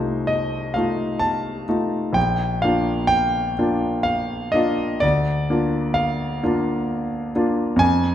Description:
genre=classical, romantic nocturne for solo piano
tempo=64 BPM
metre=3/4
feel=rubato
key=Bb major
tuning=A4 = 442 Hz
part: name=clear concert grand piano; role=solo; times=0.0-8.1 s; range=Bb1 to A5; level=-19 LUFS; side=equal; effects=none
room=moderate recital hall reverb, RT60 1.7 s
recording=none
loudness=-19 LUFS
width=side -10 dB against mid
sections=0.0-8.1 A section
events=none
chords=0.0 F7/C; 2.2 Bb; 5.0 Bb/D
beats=0.29 1.21 | 2.16 3.10 4.06 | 5.03 5.97 6.90 | 7.82

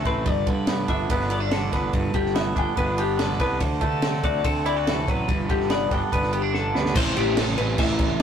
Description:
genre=math rock and midwest emo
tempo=143 BPM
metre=4/4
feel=straight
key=G major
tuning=A4 = 440 Hz
part: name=twangy electric guitar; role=accompaniment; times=0.0-7.0 s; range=G2 to F#4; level=-26 LUFS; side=right 4 dB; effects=none
part: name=twelve-string electric guitar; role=arpeggios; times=0.0-8.2 s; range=G4 to G5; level=-27 LUFS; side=left 5 dB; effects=analog delay
part: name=fuzz fingered electric bass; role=bass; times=0.1-8.2 s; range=G1 to D3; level=-27 LUFS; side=equal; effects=overdrive
part: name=compact cocktail drum kit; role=drums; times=0.1-8.2 s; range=crash cymbal, kick drum, ride cymbal, snare drum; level=-26 LUFS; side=equal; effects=none
part: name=crunchy overdriven guitar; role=riff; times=6.9-8.2 s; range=A2 to C5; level=-27 LUFS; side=right 3 dB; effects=none
room=light reverb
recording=rough rehearsal-room recording, tube saturation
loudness=-21 LUFS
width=side -8 dB against mid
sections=0.0-7.0 A section; 7.0-8.2 B section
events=drum fill 6.5-7.0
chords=0.3 G6; 3.6 D7; 5.3 G; 7.0 Am7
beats=| 0.26 0.68 1.10 1.51 | 1.93 2.35 2.77 3.19 | 3.61 4.03 4.45 4.87 | 5.28 5.70 6.12 6.54 | 6.96 7.37 7.79 8.21

